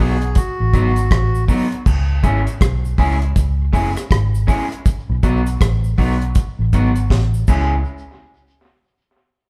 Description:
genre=roots reggae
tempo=80 BPM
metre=4/4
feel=swing 62% on 16ths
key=C# minor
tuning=A4 = 440 Hz
part: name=melodica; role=melody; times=0.0-1.4 s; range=F#4 to G#4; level=-27 LUFS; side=equal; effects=none
part: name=electric guitar at the edge of break-up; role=accompaniment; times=0.0-7.8 s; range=F#3 to G#4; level=-24 LUFS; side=equal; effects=none
part: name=vintage muted fingered electric bass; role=bass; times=0.0-7.8 s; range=F#1 to C#2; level=-20 LUFS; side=equal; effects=none
part: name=deep reggae drum kit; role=drums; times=0.2-7.7 s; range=crash cymbal, hi-hat, kick drum, rim click, snare drum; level=-20 LUFS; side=equal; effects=none
part: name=cabasa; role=percussion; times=0.4-7.8 s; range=none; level=-46 LUFS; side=equal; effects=tape echo
room=moderate large studio reverb, RT60 1.1 s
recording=band playing live in one room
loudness=-17 LUFS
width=mono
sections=0.0-1.9 A section; 1.9-7.9 B section; 7.9-9.5 C section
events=drum fill 7.1-7.9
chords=0.0 B; 1.9 C#m; 4.9 B; 7.5 C#m; 7.9 N.C.

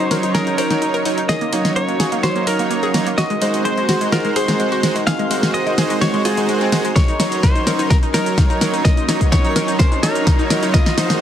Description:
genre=progressive house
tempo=127 BPM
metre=4/4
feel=straight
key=Eb dorian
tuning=A4 = 441 Hz
part: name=direct-recorded clean electric guitar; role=melody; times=0.0-11.2 s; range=Ab4 to F5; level=-23 LUFS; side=left 1 dB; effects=ping-pong delay
part: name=warm analog pad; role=sustained chords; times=0.0-11.2 s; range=C4 to F5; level=-26 LUFS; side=equal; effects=chorus, sidechain pumping
part: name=analog pluck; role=arpeggios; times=0.0-11.0 s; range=Ab3 to C5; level=-24 LUFS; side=left 1 dB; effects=chorus, sidechain pumping, ping-pong delay
part: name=soft supersaw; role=stabs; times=0.0-11.2 s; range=F3 to Db5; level=-21 LUFS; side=right 2 dB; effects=sidechain pumping, ping-pong delay
part: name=pop drum kit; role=drums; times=0.0-11.2 s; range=hi-hat, shaker, snare drum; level=-21 LUFS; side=equal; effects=none
part: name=twinkling granular texture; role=texture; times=0.3-11.2 s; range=Bb4 to C6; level=-32 LUFS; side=left 1 dB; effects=none
part: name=electronic kick drum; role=drums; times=7.0-10.8 s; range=none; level=-15 LUFS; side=equal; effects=none
part: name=riser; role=sound effects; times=8.5-11.2 s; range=none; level=-29 LUFS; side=right 1 dB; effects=none
room=light reverb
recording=heavily compressed radio sound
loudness=-14 LUFS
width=side -10 dB against mid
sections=0.0-11.2 A section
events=build-up 0.0-11.2; drum fill 0.0-11.2; riser 8.5-11.2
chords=0.0 Ebm7; 3.2 Ab7; 7.0 Ebm7

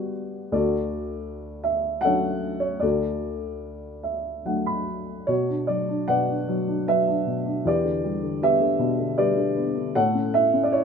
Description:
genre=classical, lyrical solo piano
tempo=70-80 BPM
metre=3/4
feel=rubato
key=D major, B minor from 5.3 s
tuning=A4 = 444 Hz
part: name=dark upright piano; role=solo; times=0.0-10.8 s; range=D2 to B5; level=-22 LUFS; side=equal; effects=none
room=moderate small room reverb, RT60 0.5 s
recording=none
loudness=-22 LUFS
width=side -6 dB against mid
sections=0.0-5.3 A section; 5.3-10.8 B section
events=upright piano fill 3.6-5.3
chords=0.0 Gmaj7; 0.5 Dmaj7; 2.8 D; 5.3 Bm; 7.7 Em7; 10.0 A

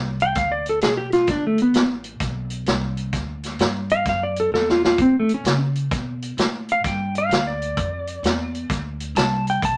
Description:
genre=electric blues shuffle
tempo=130 BPM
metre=4/4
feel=swing 65% on 8ths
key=unclear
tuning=A4 = 440 Hz
part: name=upright bass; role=bass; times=0.0-9.8 s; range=G1 to C#3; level=-30 LUFS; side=equal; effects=none
part: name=clean lap steel guitar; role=melody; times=0.2-9.8 s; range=A3 to A5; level=-22 LUFS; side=equal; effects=none
part: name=vintage drum kit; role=drums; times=0.2-9.8 s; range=hi-hat, kick drum, snare drum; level=-26 LUFS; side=equal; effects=none
room=moderate club ambience, RT60 0.5 s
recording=none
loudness=-22 LUFS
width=mono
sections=0.0-9.8 A section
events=electric slide guitar solo 0.0-9.8; drum fill 4.5-5.0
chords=0.0 Gadd9; 3.1 Dadd9; 5.0 Aadd9; 6.8 G5; 8.7 Csus2

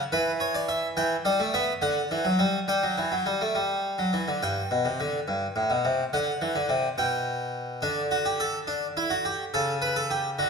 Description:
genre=classical, baroque-style two-part invention for harpsichord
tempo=70 BPM (dotted quarters)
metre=6/8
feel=straight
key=G major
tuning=A4 = 440 Hz
part: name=harpsichord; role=solo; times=0.1-10.5 s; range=G2 to G5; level=-24 LUFS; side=equal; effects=none
room=wet recital hall reverb, RT60 1.5 s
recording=minimal, uncompressed stereo recording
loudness=-24 LUFS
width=side -5 dB against mid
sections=0.0-4.4 A section; 4.4-10.5 B section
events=none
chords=0.1 E5; 1.0 Em; 1.8 D; 2.7 G5; 4.4 G; 5.3 Am7/G; 6.1 D; 7.0 G/B; 7.8 D; 8.7 Em7/D; 9.5 A/C#

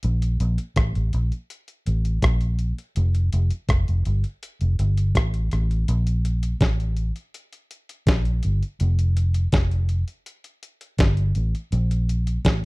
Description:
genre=lovers rock reggae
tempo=82 BPM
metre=4/4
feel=straight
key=unclear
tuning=A4 = 440 Hz
part: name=vintage muted fingered electric bass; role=bass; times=0.0-12.7 s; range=F1 to Bb1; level=-21 LUFS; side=equal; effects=none
part: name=dusty soul sampler-style drum kit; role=drums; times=0.0-12.6 s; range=hi-hat, kick drum, rim click, snare drum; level=-22 LUFS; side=equal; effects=none
room=little or no reverb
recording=dry, close 1970s-style studio recording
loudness=-20 LUFS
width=side -26 dB against mid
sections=0.0-5.9 A section; 5.9-12.7 B section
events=none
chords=none

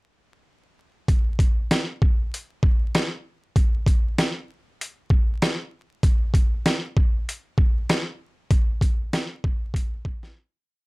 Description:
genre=hip hop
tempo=97 BPM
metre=4/4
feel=swing 54% on 16ths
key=none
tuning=none
part: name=boom bap sampler-style drum kit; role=drums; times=1.1-10.3 s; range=hi-hat, kick drum, snare drum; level=-20 LUFS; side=equal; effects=none
room=light reverb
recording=vinyl crackle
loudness=-21 LUFS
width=side -26 dB against mid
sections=1.1-10.9 verse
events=fade-out 8.5-10.9; break 10.4-10.9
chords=none

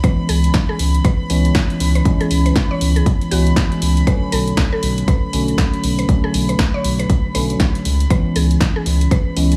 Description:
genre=deep house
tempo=119 BPM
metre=4/4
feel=swing 60% on 16ths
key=unclear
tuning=A4 = 444 Hz
part: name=mallet-like synth pluck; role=melody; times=0.0-9.4 s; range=F#4 to C#5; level=-30 LUFS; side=equal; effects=chorus, digital delay
part: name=tine electric piano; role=stabs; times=0.0-9.6 s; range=D3 to C#4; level=-22 LUFS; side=equal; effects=subtle chorus, sidechain pumping
part: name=electronic kick drum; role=drums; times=0.0-9.2 s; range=none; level=-18 LUFS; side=equal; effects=none
part: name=punchy analog drum machine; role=drums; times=0.0-9.6 s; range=hi-hat, snare drum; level=-26 LUFS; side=equal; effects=none
part: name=warm symphonic violin section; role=texture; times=0.0-9.6 s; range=B5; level=-32 LUFS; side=equal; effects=sidechain pumping
part: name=round analog bass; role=bass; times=0.3-9.6 s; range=B1 to C#2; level=-19 LUFS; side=equal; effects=sidechain pumping
room=digital ambience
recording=studio ambience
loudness=-17 LUFS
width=mono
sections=0.0-9.6 A section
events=none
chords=0.0 C#m7; 4.1 Bm9; 7.9 C#m7

